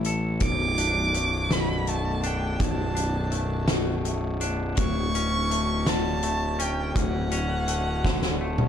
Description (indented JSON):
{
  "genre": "post-rock",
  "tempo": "55 BPM (dotted quarters)",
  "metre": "6/8",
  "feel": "straight",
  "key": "B minor",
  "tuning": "A4 = 441 Hz",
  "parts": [
    { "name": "twangy electric guitar", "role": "arpeggios", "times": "0.0-8.7 s", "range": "B1 to A4", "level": "-30 LUFS", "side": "left 3 dB", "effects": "analog delay" },
    { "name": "fuzz picked electric bass", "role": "bass", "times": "0.0-8.7 s", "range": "B0 to A1", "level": "-28 LUFS", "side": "equal", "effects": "overdrive" },
    { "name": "loose indie drum kit", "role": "drums", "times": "0.0-8.7 s", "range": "hi-hat, kick drum, snare drum, toms", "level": "-27 LUFS", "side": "equal", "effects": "none" },
    { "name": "warm violin", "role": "melody", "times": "0.4-8.7 s", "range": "F#5 to D6", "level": "-29 LUFS", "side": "right 2 dB", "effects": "analog delay" }
  ],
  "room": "light reverb, small room ambience",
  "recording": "dark, warm production",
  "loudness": "-23 LUFS",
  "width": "side -9 dB against mid",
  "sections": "0.0-8.7 A section",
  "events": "drum fill 8.0-8.7",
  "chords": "0.4 Bm7; 4.8 Dmaj7"
}